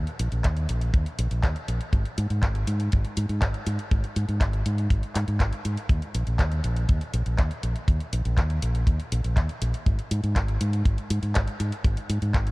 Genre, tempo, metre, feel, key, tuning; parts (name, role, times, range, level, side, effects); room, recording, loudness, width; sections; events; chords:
italo disco; 121 BPM; 4/4; straight; A4 = 437 Hz
fingered electric bass with an envelope filter; bass; 0.0-12.5 s; G#1 to G#2; -25 LUFS; equal
house drum kit; drums; 0.1-12.5 s; handclaps, hi-hat; -34 LUFS; equal
kick drum; drums; 0.4-12.4 s; -22 LUFS; equal
small room ambience; -23 LUFS; side -23 dB against mid
0.0-12.5 A section